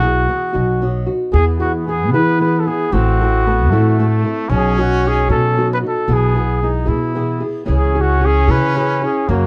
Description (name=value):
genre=mexican folk, mariachi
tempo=76 BPM (dotted quarters)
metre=6/8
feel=straight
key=E major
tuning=A4 = 439 Hz
part: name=mellow trumpet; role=melody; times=0.0-9.5 s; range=F#4 to B4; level=-21 LUFS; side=equal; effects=plate reverb
part: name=nylon-string guitar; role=accompaniment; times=0.0-9.5 s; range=F#2 to A4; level=-23 LUFS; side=equal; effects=none
part: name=upright bass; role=bass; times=0.0-9.5 s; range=A1 to E3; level=-19 LUFS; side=equal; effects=none
part: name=clear trumpet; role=second line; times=1.3-9.5 s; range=A3 to E4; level=-26 LUFS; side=equal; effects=none
room=light reverb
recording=dark, warm production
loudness=-16 LUFS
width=mono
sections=0.0-9.5 A section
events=none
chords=0.0 E/B; 0.5 B; 1.3 E; 2.9 Am; 4.5 B; 6.1 E/B; 7.7 C#m